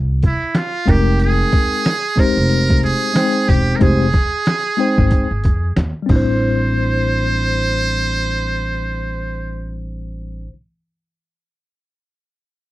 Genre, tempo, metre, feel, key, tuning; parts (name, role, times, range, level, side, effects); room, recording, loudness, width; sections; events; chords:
hip hop, jazz-hop; 92 BPM; 4/4; swing 57% on 16ths; A minor; A4 = 441 Hz
upright bass; bass; 0.0-10.5 s; E1 to F2; -19 LUFS; equal
trip hop sampler-style drum kit; drums; 0.2-6.3 s; crash cymbal, hi-hat, kick drum, snare drum; -16 LUFS; equal
trumpet with metal mute; melody; 0.3-9.8 s; E4 to C5; -20 LUFS; right 3 dB
mellow tine electric piano; accompaniment; 0.9-10.5 s; G3 to G5; -20 LUFS; left 2 dB; medium stereo tremolo
little or no reverb; dry, close 1970s-style studio recording; -14 LUFS; side -16 dB against mid
0.0-6.4 A section; 6.4-9.0 B section
0.0 C; 0.9 Fm11; 6.1 Am7